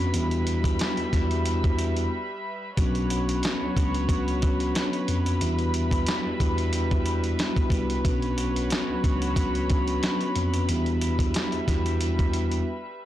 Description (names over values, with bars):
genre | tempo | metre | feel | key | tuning
hip hop, boom-bap hip-hop | 91 BPM | 4/4 | swing 55% on 16ths | unclear | A4 = 440 Hz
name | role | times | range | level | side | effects
vibraphone with soft mallets | accompaniment | 0.0-12.6 s | F#3 to F#4 | -28 LUFS | left 1 dB | high-pass filter, low-pass filter
warm studio string section | sustained chords | 0.0-13.1 s | G3 to B5 | -32 LUFS | equal | high-pass filter, low-pass filter
mellow tine electric piano | bass | 0.0-12.6 s | B1 to E#2 | -28 LUFS | equal | medium stereo tremolo, tube saturation
dusty soul sampler-style drum kit | drums | 0.1-12.7 s | hi-hat, kick drum, snare drum | -27 LUFS | equal | none
room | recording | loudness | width
light reverb | blown-out, overdriven recording, overdrive | -23 LUFS | side -13 dB against mid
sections
0.0-13.1 A section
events
break 2.1-2.8, 12.7-13.1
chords
0.1 Em7; 2.8 Bmadd9; 5.4 Em7; 8.0 Bmadd9; 10.7 Em7